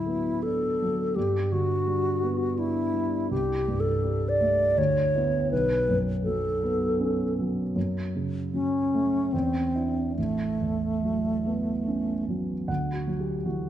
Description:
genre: classical, impressionist duo for alto flute and grand piano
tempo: 69-86 BPM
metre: 3/4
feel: rubato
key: A major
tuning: A4 = 439 Hz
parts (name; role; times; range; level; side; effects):
- wooden-headed alto flute; melody; 0.0-12.2 s; A3 to D5; -26 LUFS; left 1 dB; none
- dark concert grand piano; accompaniment; 0.0-13.7 s; A1 to F#5; -28 LUFS; right 1 dB; none
room: moderate recital hall reverb, RT60 1.7 s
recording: nothing above 10.3 kHz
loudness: -24 LUFS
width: side -11 dB against mid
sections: 0.0-12.7 A section; 12.7-13.7 B section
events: none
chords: 0.0 D69; 1.2 Gmaj7; 3.3 C5; 4.8 Dsus2; 5.5 Bsus2; 7.8 F#m; 9.3 Cadd9/E; 10.2 A69; 12.7 Dadd9

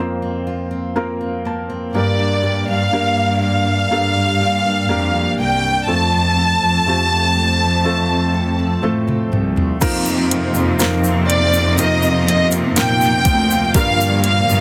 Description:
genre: pop ballad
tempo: 61 BPM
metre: 4/4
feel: straight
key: unclear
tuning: A4 = 441 Hz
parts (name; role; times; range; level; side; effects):
- felt-muted upright piano; accompaniment; 0.0-14.6 s; G2 to A5; -26 LUFS; equal; none
- fingerpicked steel-string acoustic guitar; arpeggios; 0.0-14.6 s; F2 to A4; -28 LUFS; equal; none
- warm analog pad; sustained chords; 1.9-14.6 s; D3 to F4; -28 LUFS; equal; chorus, tremolo
- dark studio cello section; bass; 1.9-14.6 s; C2 to Bb2; -21 LUFS; equal; none
- dark studio violin section; melody; 2.0-14.6 s; D5 to A5; -20 LUFS; equal; none
- smooth R&B drum kit; drums; 8.8-14.5 s; crash cymbal, hi-hat, kick drum, snare drum, toms; -22 LUFS; equal; none
- bright studio cello section; second line; 9.8-14.6 s; Bb2 to C4; -27 LUFS; equal; none
- egg shaker; percussion; 9.8-14.6 s; none; -31 LUFS; equal; none
room: small room ambience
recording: dense, heavily limited modern master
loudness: -17 LUFS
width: mono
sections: 0.0-9.8 A section; 9.8-14.6 B section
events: felt piano fill 0.5-1.9; drum fill 8.8-9.8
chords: 0.0 Fsus4; 1.9 Gm; 9.8 F7sus4; 13.7 Gm7

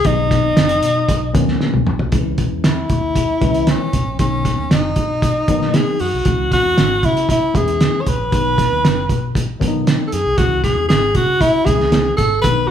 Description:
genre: uptempo 1960s-style soul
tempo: 116 BPM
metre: 4/4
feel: straight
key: C# minor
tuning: A4 = 435 Hz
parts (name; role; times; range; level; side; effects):
- breathy tenor saxophone; melody; 0.0-12.7 s; C#4 to C#5; -17 LUFS; left 1 dB; none
- mellow tine electric piano; accompaniment; 0.0-12.7 s; D#3 to E4; -23 LUFS; left 3 dB; none
- vintage muted fingered electric bass; bass; 0.0-12.7 s; F#1 to C#3; -23 LUFS; equal; none
- cloth-damped thuddy drum kit; drums; 0.0-12.6 s; hi-hat, kick drum, snare drum, toms; -18 LUFS; right 1 dB; none
room: moderate large studio reverb, RT60 0.9 s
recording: band playing live in one room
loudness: -14 LUFS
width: side -9 dB against mid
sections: 0.0-2.1 A section; 2.1-12.7 B section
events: drum fill 1.6-2.1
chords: 0.1 B; 2.1 C#m; 4.2 B; 6.3 C#m; 8.3 B; 10.4 C#m

